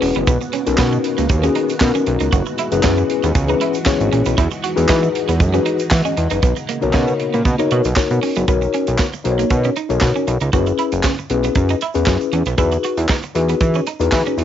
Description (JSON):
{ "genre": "early-eighties boogie funk", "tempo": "117 BPM", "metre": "4/4", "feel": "straight", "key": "B major", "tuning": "A4 = 439 Hz", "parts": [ { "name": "mellow tine electric piano", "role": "accompaniment", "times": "0.0-14.4 s", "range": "C#4 to F#5", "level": "-19 LUFS", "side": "left 9 dB", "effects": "medium stereo tremolo, cassette tape" }, { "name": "string machine, full ensemble", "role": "sustained chords", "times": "0.0-8.5 s", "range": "C#3 to F#4", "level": "-25 LUFS", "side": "right 1 dB", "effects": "ensemble chorus, cassette tape" }, { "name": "electric guitar at the edge of break-up", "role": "riff", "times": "0.0-14.4 s", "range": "A#3 to F#4", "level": "-24 LUFS", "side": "right 9 dB", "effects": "analog chorus, cassette tape" }, { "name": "fat analog bass", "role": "bass", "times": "0.0-14.4 s", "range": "E1 to E3", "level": "-18 LUFS", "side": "right 1 dB", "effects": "none" }, { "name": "tight funk drum kit", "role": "drums", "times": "0.0-14.4 s", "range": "handclaps, hi-hat, kick drum, snare drum", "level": "-20 LUFS", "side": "right 1 dB", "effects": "cassette tape" }, { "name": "egg shaker", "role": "percussion", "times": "0.3-14.4 s", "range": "none", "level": "-38 LUFS", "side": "right 13 dB", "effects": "none" } ], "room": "little or no reverb", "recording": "home recording on cassette, nothing above 7.7 kHz", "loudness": "-15 LUFS", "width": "side -10 dB against mid", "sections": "0.0-8.5 A section; 8.5-14.4 B section", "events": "none", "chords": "0.3 Bmaj7; 2.3 F#9sus4; 4.4 Emaj9; 6.4 Bmaj9; 8.5 Bmaj7; 10.5 F#9sus4; 12.6 Emaj9" }